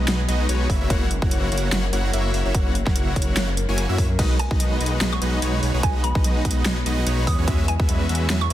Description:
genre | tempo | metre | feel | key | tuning
future bass | 146 BPM | 4/4 | swing 56% on 16ths, half-time | B major | A4 = 440 Hz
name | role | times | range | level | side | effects
concert harp | arpeggios | 0.0-8.5 s | G#3 to C#4 | -31 LUFS | left 6 dB | sidechain pumping, dub echo
big bright polysynth | riff | 0.0-8.5 s | G#3 to G#5 | -26 LUFS | right 1 dB | chorus, sidechain pumping
wide detuned saw bass | bass | 0.0-8.5 s | F#1 to F#2 | -23 LUFS | equal | chorus, sidechain pumping
big-room dance drum kit | drums | 0.1-8.5 s | crash cymbal, hi-hat, snare drum | -27 LUFS | right 1 dB | overdrive
electronic kick drum | drums | 0.7-7.9 s | none | -22 LUFS | equal | overdrive
mallet-like synth pluck | melody | 4.4-8.5 s | G#5 to D#6 | -31 LUFS | right 3 dB | phaser, analog chorus, sidechain pumping, dub echo
room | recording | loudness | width
little or no reverb | dense, heavily limited modern master | -19 LUFS | side -13 dB against mid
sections
0.0-8.5 A section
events
none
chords
0.0 B6; 0.7 F#7; 4.2 B6; 7.3 E69

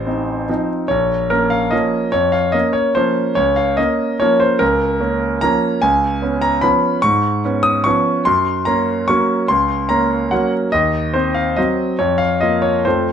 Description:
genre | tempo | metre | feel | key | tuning
classical, piano waltz | 146 BPM | 3/4 | uneven beats, rubato | Bb minor | A4 = 440 Hz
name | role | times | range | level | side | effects
clear concert grand piano | solo | 0.0-13.1 s | A1 to Eb6 | -14 LUFS | equal | none
room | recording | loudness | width
wet large studio reverb, RT60 0.8 s | none | -14 LUFS | side -8 dB against mid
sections
0.0-13.1 A section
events
none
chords
0.0 F7/A; 0.9 Bbm; 3.4 Bbm/Db; 5.8 Db7; 8.3 Gb; 10.7 Cdim/Eb; 12.0 Bb5/F

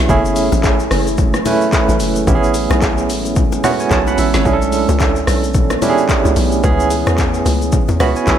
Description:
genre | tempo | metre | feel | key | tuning
amapiano | 110 BPM | 4/4 | swing 58% on 16ths | F# minor | A4 = 440 Hz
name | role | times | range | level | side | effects
barky tine electric piano | accompaniment | 0.0-8.4 s | A3 to B5 | -17 LUFS | right 5 dB | medium tremolo
deep dark ambient pad | sustained chords | 0.0-8.4 s | C#3 to G#4 | -22 LUFS | left 2 dB | chorus, built-in reverb, sidechain pumping
tight log drum bass | bass | 0.0-8.4 s | F#1 to E2 | -18 LUFS | equal | none
deep house drum kit | drums | 0.1-8.4 s | handclaps, hi-hat, kick drum, rim click, shaker, snare drum | -18 LUFS | left 1 dB | none
congas and bongos | percussion | 0.1-8.4 s | none | -25 LUFS | left 8 dB | none
room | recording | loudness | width
light reverb | none | -12 LUFS | side -10 dB against mid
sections
0.0-8.4 A section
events
tine electric piano fill 3.4-4.5, 7.7-8.4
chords
0.1 F#m9; 2.3 Amaj9; 4.5 Bm11; 6.6 C#m7

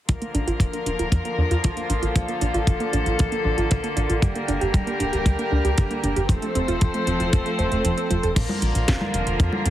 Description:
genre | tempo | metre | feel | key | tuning
italo disco | 116 BPM | 4/4 | straight | unclear | A4 = 440 Hz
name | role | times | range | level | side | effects
rich chamber string section | sustained chords | 0.1-9.7 s | D3 to C5 | -25 LUFS | left 1 dB | none
wide unison pluck | arpeggios | 0.1-8.3 s | F3 to C5 | -28 LUFS | right 3 dB | digital delay
tight sequencer bass | bass | 0.1-9.7 s | D1 to F2 | -24 LUFS | equal | none
house drum kit | drums | 0.1-9.7 s | congas, crash cymbal, hi-hat, snare drum | -29 LUFS | equal | none
kick drum | drums | 0.1-9.5 s | none | -21 LUFS | equal | none
room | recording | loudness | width
light reverb, studio reverb | heavily compressed radio sound | -20 LUFS | side -13 dB against mid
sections
0.1-8.4 A section; 8.4-9.7 B section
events
filter sweep on analog synth bass 0.1-8.4; filter sweep on synth arpeggio sound 0.1-8.4; kick drops out 7.8-8.4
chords
0.1 Bb; 4.2 Gm; 6.3 F; 8.4 Bb

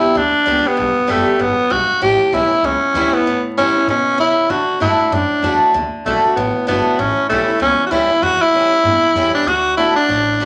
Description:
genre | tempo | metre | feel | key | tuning
rockabilly | 193 BPM | 4/4 | swing 59% on 8ths | D major | A4 = 440 Hz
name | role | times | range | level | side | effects
raspy tenor saxophone | melody | 0.0-10.5 s | A3 to G4 | -17 LUFS | equal | none
picked swing-style acoustic guitar | accompaniment | 0.0-10.5 s | E2 to G4 | -22 LUFS | equal | none
upright bass | bass | 0.0-10.4 s | F#1 to D3 | -28 LUFS | equal | none
room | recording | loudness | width
moderate large studio reverb, RT60 0.9 s | vinyl crackle | -15 LUFS | mono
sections
0.0-9.5 A section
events
none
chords
0.0 G; 2.0 A7; 4.5 D; 7.0 A7; 9.5 D

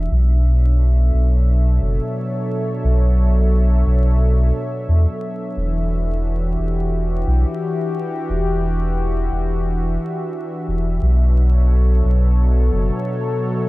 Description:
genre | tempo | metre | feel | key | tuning
ambient dub | 88 BPM | 4/4 | swing 58% on 16ths | E dorian | A4 = 439 Hz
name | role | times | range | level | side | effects
warm analog pad | sustained chords | 0.0-13.7 s | B2 to E5 | -23 LUFS | equal | chorus
warm sub bass | bass | 0.0-12.9 s | E1 to E2 | -15 LUFS | equal | none
room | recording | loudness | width
light reverb | vinyl crackle | -16 LUFS | side -20 dB against mid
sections
0.0-13.7 A section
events
none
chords
0.1 Bm11; 5.6 Em9; 11.0 Bm11

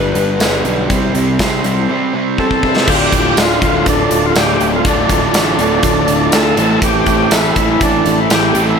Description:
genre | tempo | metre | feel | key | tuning
classic rock | 122 BPM | 4/4 | straight | D dorian | A4 = 439 Hz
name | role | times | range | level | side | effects
overdriven slide guitar | second line | 0.0-0.6 s | B4 | -20 LUFS | left 7 dB | none
fingerpicked twelve-string acoustic guitar | accompaniment | 0.0-8.8 s | A2 to C5 | -24 LUFS | left 1 dB | none
distorted electric guitar | riff | 0.0-8.8 s | D2 to C4 | -19 LUFS | right 12 dB | distortion
sludgy distorted guitar | riff | 0.0-8.8 s | D2 to A4 | -22 LUFS | left 11 dB | overdrive
fuzz picked electric bass | bass | 0.0-8.7 s | D1 to D2 | -19 LUFS | equal | overdrive
big rock drum kit | drums | 0.2-8.7 s | crash cymbal, hi-hat, kick drum, snare drum, tambourine | -16 LUFS | equal | none
overdriven tonewheel organ | melody | 2.4-8.8 s | D4 to A4 | -16 LUFS | left 1 dB | slow rotary speaker
tonewheel organ | sustained chords | 2.6-8.8 s | E3 to E5 | -26 LUFS | right 1 dB | none
cranked stack guitar | riff | 2.9-8.8 s | D2 to A3 | -21 LUFS | equal | overdrive
room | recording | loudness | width
moderate studio reverb, RT60 0.5 s | none | -11 LUFS | side -6 dB against mid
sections
0.0-2.9 A section; 2.9-8.8 B section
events
drum fill 2.4-2.9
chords
0.0 G; 0.9 C; 2.9 Dm; 6.6 Am

